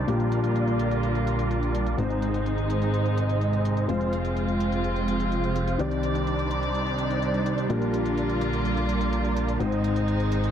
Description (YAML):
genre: EDM, festival progressive house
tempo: 126 BPM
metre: 4/4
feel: straight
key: unclear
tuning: A4 = 438 Hz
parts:
  - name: dark concert grand piano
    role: accompaniment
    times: 0.0-10.5 s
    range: Ab2 to D5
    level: -28 LUFS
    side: left 3 dB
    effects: dub echo
  - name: warm chamber string section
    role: sustained chords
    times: 0.0-10.5 s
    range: C3 to D5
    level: -30 LUFS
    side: right 1 dB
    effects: low-pass filter
  - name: supersaw chords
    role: riff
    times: 0.0-10.5 s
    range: G3 to F5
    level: -29 LUFS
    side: right 2 dB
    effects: phaser, low-pass filter, dub echo
  - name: fat analog bass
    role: bass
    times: 0.0-10.5 s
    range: F1 to C2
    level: -29 LUFS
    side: right 1 dB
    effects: none
  - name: electronic hi-hat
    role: drums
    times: 0.1-10.5 s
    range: none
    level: -50 LUFS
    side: right 2 dB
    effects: low-pass filter on hats, low-pass filter on room
room: light reverb, digital ambience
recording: none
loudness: -23 LUFS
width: side -9 dB against mid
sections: 0.0-10.5 A section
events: none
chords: 0.1 Bb6; 2.0 Ab; 3.9 Fm; 5.8 Cmadd9; 7.7 Bb6; 9.6 Ab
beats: | 0.08 0.56 1.03 1.51 | 1.99 2.46 2.94 3.41 | 3.89 4.37 4.84 5.32 | 5.79 6.27 6.75 7.22 | 7.70 8.18 8.65 9.13 | 9.60 10.08